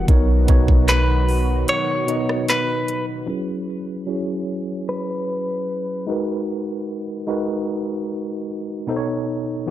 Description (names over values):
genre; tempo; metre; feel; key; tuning
contemporary R&B; 75 BPM; 4/4; straight; B major; A4 = 441 Hz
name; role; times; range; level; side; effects
direct-recorded clean electric guitar; melody; 0.0-6.0 s; B4 to C#5; -23 LUFS; left 1 dB; spring reverb, low-pass filter, tape echo
tine electric piano; accompaniment; 0.0-9.7 s; B2 to D#5; -24 LUFS; right 1 dB; overdrive, fast stereo tremolo, low-pass filter
warm analog pad; sustained chords; 0.0-3.2 s; D#3 to F#4; -30 LUFS; left 1 dB; chorus
clean 808-style bass; bass; 0.0-1.6 s; B1; -17 LUFS; equal; none
trap drum kit; drums; 0.1-3.1 s; handclaps, hi-hat, kick drum, rim click; -19 LUFS; equal; none
room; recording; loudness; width
digital ambience; dry, gritty hardware recording, transformer saturation; -19 LUFS; side -12 dB against mid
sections
0.0-3.3 A section; 3.3-9.7 B section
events
break 1.7-3.3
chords
0.1 Bmaj7; 3.3 F#7sus4; 6.1 G#m7; 8.9 B7